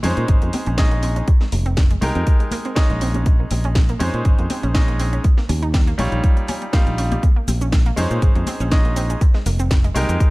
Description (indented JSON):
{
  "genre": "nu-disco, nu disco",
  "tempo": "121 BPM",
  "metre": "4/4",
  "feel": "swing 54% on 16ths",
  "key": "Bb dorian",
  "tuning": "A4 = 440 Hz",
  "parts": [
    { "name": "bright grand piano", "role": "accompaniment", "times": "0.0-10.3 s", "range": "G3 to F5", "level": "-25 LUFS", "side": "equal", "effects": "slapback echo" },
    { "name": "wide unison pluck", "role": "arpeggios", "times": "0.0-10.3 s", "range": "G3 to G4", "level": "-29 LUFS", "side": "right 3 dB", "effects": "sidechain pumping, tape echo" },
    { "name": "modern bright fingered electric bass", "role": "bass", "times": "0.0-10.2 s", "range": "F1 to Bb2", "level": "-20 LUFS", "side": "equal", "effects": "tube saturation, sidechain pumping" },
    { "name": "house drum kit", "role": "drums", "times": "0.0-10.3 s", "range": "cabasa, hi-hat, snare drum", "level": "-28 LUFS", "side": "equal", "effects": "none" },
    { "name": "congas", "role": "percussion", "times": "0.0-10.1 s", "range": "none", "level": "-28 LUFS", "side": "left 2 dB", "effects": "none" },
    { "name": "electronic kick drum", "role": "drums", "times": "0.3-10.3 s", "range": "none", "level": "-15 LUFS", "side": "equal", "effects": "none" }
  ],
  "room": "little or no reverb",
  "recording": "none",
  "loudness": "-16 LUFS",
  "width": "side -22 dB against mid",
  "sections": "0.0-10.3 A section",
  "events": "none",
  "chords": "0.0 Bbm11; 1.3 Fm11; 3.0 Bbm11; 5.2 Eb9; 7.2 Bbm11; 9.2 Fm11"
}